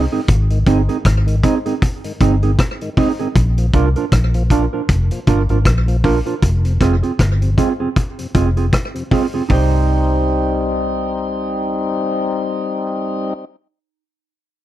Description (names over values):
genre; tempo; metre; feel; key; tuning
roots reggae; 78 BPM; 4/4; swing 57% on 16ths; C minor; A4 = 440 Hz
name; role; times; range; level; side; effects
mellow electric guitar; accompaniment; 0.0-13.5 s; C4 to C5; -20 LUFS; right 7 dB; tape echo
vintage muted fingered electric bass; bass; 0.0-13.4 s; F1 to C2; -16 LUFS; equal; none
tonewheel organ; accompaniment; 0.1-13.3 s; F2 to F4; -22 LUFS; left 2 dB; slow rotary speaker, slapback echo
vintage drum kit; drums; 0.3-9.7 s; hi-hat, kick drum, rim click, toms; -17 LUFS; equal; none
room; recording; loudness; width
little or no reverb; dry, close 1970s-style studio recording; -14 LUFS; side -13 dB against mid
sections
0.0-9.5 A section; 9.5-12.6 B section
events
none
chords
0.0 Ab; 3.4 Bb; 6.4 Fm; 9.5 Cm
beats
| 0.28 1.05 1.82 2.58 | 3.35 4.12 4.89 5.66 | 6.42 7.19 7.96 8.73 | 9.50 10.27 11.04 11.80